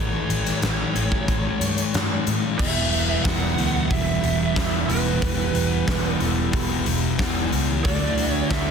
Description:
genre	rock, shoegaze and dream pop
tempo	91 BPM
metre	4/4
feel	straight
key	unclear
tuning	A4 = 441 Hz
part	lead guitar through a small cranked amp	melody	0.0-8.7 s	B4 to F#5	-29 LUFS	right 6 dB	overdrive, tape echo
part	overdriven semi-hollow guitar	riff	0.0-8.7 s	E2 to G4	-29 LUFS	right 14 dB	reverse reverb
part	thick fuzz guitar	riff	0.0-8.7 s	E2 to D4	-25 LUFS	left 8 dB	distortion, wide subtle chorus
part	vintage muted fingered electric bass	bass	0.0-8.7 s	E1 to A2	-27 LUFS	equal	none
part	big rock drum kit	drums	0.3-8.7 s	crash cymbal, hi-hat, kick drum, snare drum	-25 LUFS	equal	none
part	deep dark ambient pad	sustained chords	3.9-8.7 s	D4 to B5	-34 LUFS	right 4 dB	chorus, built-in reverb
room	small room ambience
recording	dense, heavily limited modern master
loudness	-20 LUFS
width	side -6 dB against mid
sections	0.0-2.6 A section; 2.6-8.7 B section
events	none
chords	0.0 A7; 2.6 Emadd9; 7.8 D

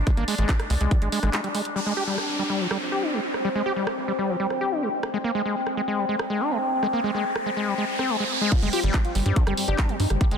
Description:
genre	psychedelic trance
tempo	142 BPM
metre	4/4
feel	straight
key	unclear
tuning	A4 = 441 Hz
part	overtone-sweeping drone	sustained chords	0.0-10.4 s	C4 to D4	-29 LUFS	left 1 dB	chorus, built-in reverb, sidechain pumping
part	tight sequencer bass	bass	0.0-1.3, 8.6-10.4 s	G1 to G2	-23 LUFS	equal	none
part	overdriven acid bass	riff	0.1-10.4 s	F3 to G4	-27 LUFS	left 1 dB	auto-pan, sidechain pumping, dub echo
part	electronic kick drum	drums	0.1-1.0, 8.5-10.3 s	none	-22 LUFS	equal	none
part	garage drum kit	drums	0.1-10.4 s	crash cymbal, handclaps, hi-hat, rim click	-32 LUFS	right 1 dB	none
part	downlifter and riser	sound effects	1.8-8.5 s	none	-32 LUFS	right 1 dB	none
part	wide unison lead	melody	8.5-10.4 s	G3 to G4	-29 LUFS	left 2 dB	phaser, sidechain pumping, ping-pong delay
room	moderate lush hall reverb, RT60 2.2 s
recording	dense, heavily limited modern master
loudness	-22 LUFS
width	side -7 dB against mid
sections	0.0-1.8 A section; 1.8-8.5 B section; 8.5-10.4 C section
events	break 1.3-1.8; filter sweep on acid bass 1.8-8.5; filter sweep on synth drone 1.8-8.5; riser 6.1-8.5; drop 8.5-10.4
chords	0.0 Ab5; 1.8 G5; 5.1 Ab5; 8.5 G5

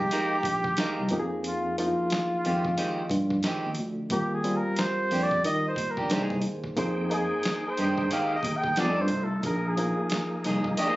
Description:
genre	R&B, neo-soul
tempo	90 BPM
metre	4/4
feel	swing 62% on 16ths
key	F dorian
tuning	A4 = 439 Hz
part	warm flugelhorn	melody	0.0-11.0 s	F4 to G5	-29 LUFS	equal	slapback echo
part	barky reed electric piano	accompaniment	0.0-11.0 s	F3 to Eb5	-32 LUFS	left 1 dB	fast tremolo
part	overdriven tine electric piano	bass	0.0-10.7 s	Bb1 to Eb3	-30 LUFS	equal	medium tremolo
part	clean electric guitar	second line	0.1-11.0 s	Eb3 to Bb4	-31 LUFS	right 2 dB	none
part	boom bap sampler-style drum kit	drums	0.1-11.0 s	hi-hat, kick drum, snare drum	-33 LUFS	equal	none
part	bright tonewheel organ	sustained chords	6.8-11.0 s	A3 to G5	-36 LUFS	equal	fast rotary speaker, chorus vibrato
room	digital ambience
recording	recorded on a phone in the room, studio ambience, compression, nothing above 7.7 kHz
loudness	-25 LUFS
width	side -18 dB against mid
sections	0.0-11.0 A section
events	flugelhorn solo 0.0-11.0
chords	0.0 Bb7sus4; 1.1 Fm9; 4.1 Ebmaj9; 6.1 C7alt; 6.8 Fm9; 8.8 F7; 9.4 Bb7sus4

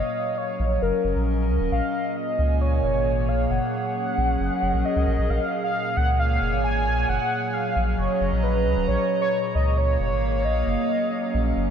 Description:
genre	IDM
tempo	134 BPM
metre	4/4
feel	straight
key	unclear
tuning	A4 = 440 Hz
part	warm velvety synth lead	melody	0.0-11.7 s	Bb4 to Ab5	-25 LUFS	right 1 dB	chorus, shimmer reverb, digital delay
part	warbly tape-like pad	sustained chords	0.0-11.7 s	Bb2 to Bb5	-26 LUFS	equal	chorus, built-in reverb, vintage 12-bit sampler grit, shimmer reverb
part	round analog bass	bass	0.6-11.7 s	Eb1 to Db2	-24 LUFS	equal	tube saturation
room	moderate huge ambient reverb, RT60 4.4 s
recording	dark, warm production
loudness	-21 LUFS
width	side -8 dB against mid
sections	0.0-11.7 A section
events	none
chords	0.0 Gb6; 1.7 Bbm7; 3.5 Gb6; 5.3 Bbm7; 7.1 Gb6; 8.9 Bbm7; 10.7 Gb6

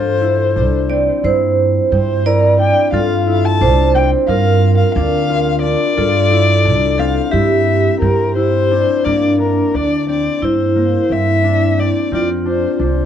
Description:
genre	contemporary instrumental, chamber music in an uneven meter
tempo	177 BPM (eighths)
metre	9/8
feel	straight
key	G dorian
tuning	A4 = 440 Hz
part	dark violin	melody	0.0-13.1 s	Bb4 to A5	-18 LUFS	left 4 dB	none
part	vibraphone with hard mallets	second line	0.0-13.1 s	D4 to D5	-18 LUFS	right 3 dB	none
part	concert harp	arpeggios	0.0-13.1 s	Bb3 to F4	-20 LUFS	left 6 dB	none
part	upright bass	bass	0.0-13.1 s	C2 to G2	-17 LUFS	right 2 dB	none
room	light reverb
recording	worn, warbling old tape, cassette tape, warbly pitch drift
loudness	-12 LUFS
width	side -9 dB against mid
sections	0.0-9.1 A section; 9.1-13.1 B section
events	none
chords	0.0 F69/G; 1.2 Cadd9/G; 2.9 F69/G; 4.3 Gm7; 6.0 F69/G; 7.3 Cadd9/G; 9.1 Gm; 10.4 C7/G; 12.1 F5

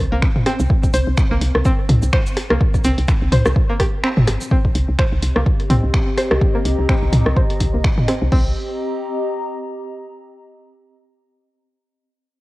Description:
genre	minimal techno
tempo	126 BPM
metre	4/4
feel	swing 57% on 16ths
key	C minor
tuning	A4 = 440 Hz
part	woody FM bass	bass	0.0-8.5 s	G1 to C2	-19 LUFS	equal	sidechain pumping
part	swarming drone	texture	0.0-8.3 s	C4	-33 LUFS	equal	none
part	string-like resonator pluck	riff	0.1-8.5 s	Bb3 to C5	-25 LUFS	equal	chorus, sidechain pumping, cassette tape, analog delay
part	punchy analog drum machine	drums	0.2-8.4 s	crash cymbal, kick drum	-17 LUFS	equal	none
part	punchy analog drum machine	drums	0.2-8.2 s	finger snaps, hi-hat, shaker	-27 LUFS	equal	none
part	minimal click drum kit	percussion	0.4-8.2 s	percussion blips, rim click, toms	-20 LUFS	equal	overdrive
part	warbly tape-like pad	texture	5.4-10.2 s	C4 to Bb5	-25 LUFS	left 1 dB	chorus, built-in reverb, phaser, sidechain pumping, cassette tape
room	light reverb, digital ambience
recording	home recording on cassette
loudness	-15 LUFS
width	side -19 dB against mid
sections	0.0-4.5 A section; 4.5-8.3 B section; 8.3-10.2 C section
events	drop 0.0-4.5; kick drops out 4.0-4.5; filter sweep on synth pluck 4.5-8.3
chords	0.0 C5; 4.5 Cm7

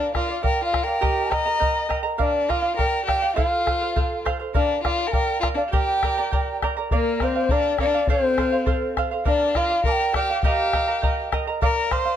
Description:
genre	andean folk, Andean ensemble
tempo	102 BPM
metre	2/4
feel	straight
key	unclear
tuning	A4 = 437 Hz
part	mellow large quena	melody	0.0-12.2 s	Bb4 to C6	-24 LUFS	equal	none
part	rich violin	second line	0.0-12.2 s	Bb3 to Eb5	-27 LUFS	left 4 dB	none
part	charango	accompaniment	0.0-12.2 s	G4 to Bb5	-26 LUFS	right 5 dB	none
part	bombo	percussion	0.1-12.1 s	none	-25 LUFS	left 1 dB	none
room	light reverb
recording	close, detailed microphones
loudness	-20 LUFS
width	side -10 dB against mid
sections	0.0-6.9 A section; 6.9-12.2 A section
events	none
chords	0.0 Bb; 1.0 Eb; 2.2 Bb; 3.4 F; 4.6 Bb; 5.7 Gm; 6.9 Bb; 8.1 F; 9.3 Bb; 10.4 Eb; 11.6 Bb

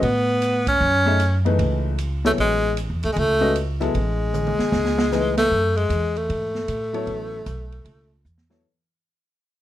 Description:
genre	modal jazz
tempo	153 BPM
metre	4/4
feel	swing 66% on 8ths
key	F# dorian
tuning	A4 = 441 Hz
part	clear tenor saxophone	melody	0.0-8.3 s	G#3 to C#4	-21 LUFS	left 1 dB	plate reverb
part	upright bass	bass	0.0-8.6 s	A1 to A2	-24 LUFS	right 1 dB	none
part	open jazz drum kit	drums	0.0-8.6 s	hi-hat, kick drum, ride cymbal, snare drum, toms	-29 LUFS	right 2 dB	none
part	warm baby grand piano	accompaniment	1.1-8.6 s	E3 to E5	-25 LUFS	left 3 dB	none
room	light reverb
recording	none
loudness	-19 LUFS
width	side -13 dB against mid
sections	0.0-5.5 A section; 5.5-8.6 B section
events	band accent 0.6, 5.3; drum fill 4.3-5.1, 8.3-8.6; fade-out 5.5-8.6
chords	0.0 F#m9

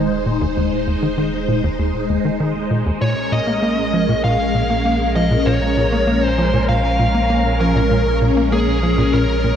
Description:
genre	ambient, sequencer-driven space music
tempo	98 BPM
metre	4/4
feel	straight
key	unclear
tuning	A4 = 439 Hz
part	phased string machine	sustained chords	0.0-9.6 s	Ab3 to C5	-20 LUFS	equal	ensemble chorus, phaser
part	tight sequencer bass	riff	0.0-9.5 s	Eb2 to Bb3	-20 LUFS	equal	analog delay
part	warm sub bass	bass	0.0-9.6 s	Eb1 to Bb1	-23 LUFS	equal	none
part	smooth overdriven lead guitar	melody	3.0-9.6 s	Ab4 to F5	-21 LUFS	left 1 dB	analog delay
room	moderate plate reverb, RT60 2.6 s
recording	dreamy mix soaked in reverb, cassette tape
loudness	-15 LUFS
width	side -9 dB against mid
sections	0.0-9.6 A section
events	none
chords	0.0 Ebsus4; 3.0 Bbm7

